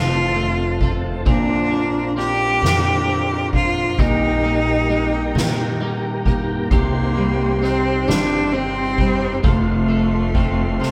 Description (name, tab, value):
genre	six-eight pop ballad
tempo	44 BPM (dotted quarters)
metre	6/8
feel	straight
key	Bb major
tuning	A4 = 441 Hz
part	clear cello	melody	0.0-10.9 s	A3 to G4	-23 LUFS	equal	none
part	nylon-string guitar	accompaniment	0.0-10.9 s	F2 to G4	-28 LUFS	equal	none
part	percussive tonewheel organ	sustained chords	0.0-10.9 s	F4 to C6	-30 LUFS	equal	chorus vibrato, slow rotary speaker
part	twelve-string electric guitar	arpeggios	0.0-10.9 s	Bb2 to Bb4	-32 LUFS	equal	phaser
part	upright bass	bass	0.0-10.9 s	F1 to Bb2	-26 LUFS	equal	none
part	soft-mallet drum kit	drums	0.4-10.9 s	kick drum, ride cymbal, snare drum	-25 LUFS	equal	none
room	moderate studio reverb, RT60 0.5 s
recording	band playing live in one room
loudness	-19 LUFS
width	mono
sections	0.0-10.9 A section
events	none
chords	0.0 F; 1.3 Bbadd9; 4.0 Eb/Bb; 6.7 Cm; 9.4 F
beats	| 1.26 2.62 | 3.98 5.35 | 6.71 8.07 | 9.44 10.80